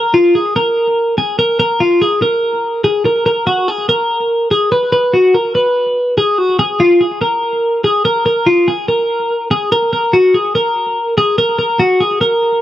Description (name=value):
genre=indie pop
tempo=144 BPM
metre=4/4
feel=straight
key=unclear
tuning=A4 = 439 Hz
part: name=twelve-string electric guitar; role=solo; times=0.0-12.6 s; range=F4 to Cb5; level=-11 LUFS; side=equal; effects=none
room=light reverb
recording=dry, close 1970s-style studio recording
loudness=-11 LUFS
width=side -12 dB against mid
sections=0.0-6.8 A section; 6.8-12.6 B section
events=none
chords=none